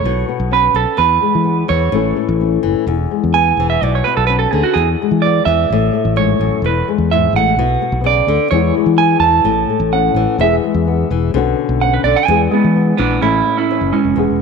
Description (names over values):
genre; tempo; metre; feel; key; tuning
highlife guitar band; 128 BPM; 4/4; straight; A major; A4 = 440 Hz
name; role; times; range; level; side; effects
clean electric guitar; melody; 0.0-14.4 s; G#3 to A5; -15 LUFS; right 10 dB; spring reverb
flamenco guitar; accompaniment; 0.0-14.4 s; E2 to G#4; -17 LUFS; left 12 dB; none
fingered electric bass; bass; 0.0-14.4 s; E1 to E3; -18 LUFS; left 1 dB; none
room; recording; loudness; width
moderate echo chamber reverb, RT60 2.6 s; 1960s-style stereo with parts hard left and right; -12 LUFS; side -5 dB against mid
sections
0.0-13.2 A section; 13.2-14.4 B section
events
clean electric guitar solo 0.0-13.2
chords
0.0 Bsus2; 1.0 E; 1.9 A; 2.9 E; 3.8 Bmadd9; 4.8 E; 5.7 A; 6.6 E; 7.6 Bmadd9; 8.5 E; 9.5 A; 10.4 E; 11.3 Bmadd9; 12.3 E; 13.2 A